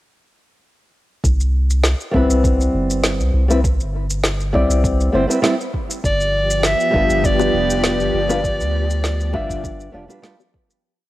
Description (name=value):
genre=sunset chillout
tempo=100 BPM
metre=4/4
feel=straight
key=C major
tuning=A4 = 440 Hz
part: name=round analog bass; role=bass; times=1.2-10.1 s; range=F1 to D2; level=-19 LUFS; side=equal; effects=tube saturation
part: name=electronic kick drum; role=drums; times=1.2-10.7 s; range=none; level=-22 LUFS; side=equal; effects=none
part: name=electronic shaker and snare drum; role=drums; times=1.2-10.8 s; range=none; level=-22 LUFS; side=equal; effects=none
part: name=nylon-string guitar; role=accompaniment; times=2.1-10.3 s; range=G3 to E5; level=-20 LUFS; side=left 1 dB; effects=auto-pan, cassette tape, analog delay
part: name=soft string machine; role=sustained chords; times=6.2-10.8 s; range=F3 to G4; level=-24 LUFS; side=equal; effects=ensemble chorus, cassette tape
part: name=clear soprano saxophone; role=melody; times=6.1-10.2 s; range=D5 to E5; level=-20 LUFS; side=equal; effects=cassette tape
part: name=bongos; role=percussion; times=7.4-10.5 s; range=none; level=-24 LUFS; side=left 10 dB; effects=none
room=light reverb, studio reverb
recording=home recording on cassette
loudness=-15 LUFS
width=side -16 dB against mid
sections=1.2-10.8 groove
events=fade-out 7.6-10.8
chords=1.2 Cmaj7; 6.0 G7